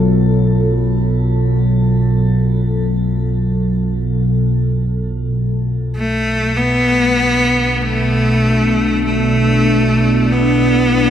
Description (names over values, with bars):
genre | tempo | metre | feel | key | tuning
dark ambient drone | free time | none | none | B minor | A4 = 440 Hz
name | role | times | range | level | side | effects
deep dark ambient pad | sustained chords | 0.0-11.1 s | B2 to A4 | -17 LUFS | left 1 dB | chorus, built-in reverb, shimmer reverb
deep rumbling drone | drone | 0.0-11.1 s | B1 to B2 | -17 LUFS | right 2 dB | built-in reverb
bronze singing bowl | texture | 0.0-5.3 s | E#4 | -34 LUFS | right 1 dB | shimmer reverb
clear cello | melody | 6.0-11.1 s | A3 to B3 | -14 LUFS | left 1 dB | shimmer reverb, diffuse ambient delay
room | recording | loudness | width
wet cathedral reverb, RT60 6.0 s | none | -13 LUFS | side -10 dB against mid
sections
0.0-5.3 A section; 5.3-11.1 B section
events
none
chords
0.0 Bm7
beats
free time